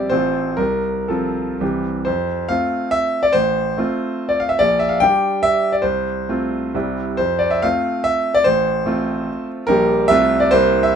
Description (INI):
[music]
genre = classical, romantic triple-time dance for piano with dotted rhythms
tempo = 111-155 BPM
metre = 3/4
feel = rubato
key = F major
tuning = A4 = 440 Hz
[part]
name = bright grand piano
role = solo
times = 0.0-11.0 s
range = A1 to G5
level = -16 LUFS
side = equal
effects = none
[sound]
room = moderate studio reverb, RT60 0.5 s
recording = minimal, uncompressed stereo recording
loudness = -16 LUFS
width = side -7 dB against mid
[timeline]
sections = 0.0-2.1 A section; 2.1-11.0 B section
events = none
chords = 0.1 F/A; 0.6 F/C; 1.6 C; 2.1 F; 3.3 F/A; 4.6 Gm/Bb; 5.8 F/C; 6.7 C; 7.2 F; 8.5 F/A; 9.7 Gm/Bb; 10.1 F/C; 10.5 C7